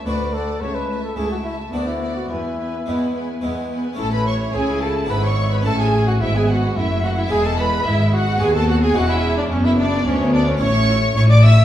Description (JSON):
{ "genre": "classical, baroque-style concerto movement with solo episodes", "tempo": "108 BPM", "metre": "3/4", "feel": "straight", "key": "A major", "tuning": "A4 = 440 Hz", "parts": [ { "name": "rich chamber violin section", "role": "melody", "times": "0.0-11.6 s", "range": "C#5 to E6", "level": "-27 LUFS", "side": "equal", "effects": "none" }, { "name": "rich studio violin section", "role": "second line", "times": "0.0-11.6 s", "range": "C#4 to E5", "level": "-28 LUFS", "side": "equal", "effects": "none" }, { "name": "warm studio viola section", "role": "accompaniment", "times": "0.0-11.5 s", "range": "G#3 to E4", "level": "-26 LUFS", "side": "equal", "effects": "none" }, { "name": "dark trumpet", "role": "melody", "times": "0.1-11.6 s", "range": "C#4 to E5", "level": "-24 LUFS", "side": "equal", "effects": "none" }, { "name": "harpsichord", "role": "accompaniment", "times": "0.1-11.6 s", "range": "C#2 to F#4", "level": "-28 LUFS", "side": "left 1 dB", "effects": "none" }, { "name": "clear studio cello section", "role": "bass", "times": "0.1-11.6 s", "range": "C#2 to C#3", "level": "-21 LUFS", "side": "equal", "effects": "none" }, { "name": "rich chamber double bass section", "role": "bass", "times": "4.0-11.6 s", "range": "E1 to D#2", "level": "-20 LUFS", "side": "equal", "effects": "none" } ], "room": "wet stone room reverb, RT60 1.3 s", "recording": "heard from further back in the room", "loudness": "-16 LUFS", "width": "side -12 dB against mid", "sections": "0.0-4.0 A section; 4.0-11.6 B section", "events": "none", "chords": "0.0 D; 0.6 A/C#; 1.7 Bm/D; 2.3 E; 4.0 A; 5.1 E7/G#; 5.6 A; 7.3 E; 8.4 B/D#; 9.0 E; 10.6 A", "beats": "0.05 | 0.60 1.16 1.72 | 2.29 2.85 3.42 | 3.98 4.54 5.09 | 5.65 6.20 6.75 | 7.31 7.86 8.41 | 8.96 9.51 10.06 | 10.61 11.16" }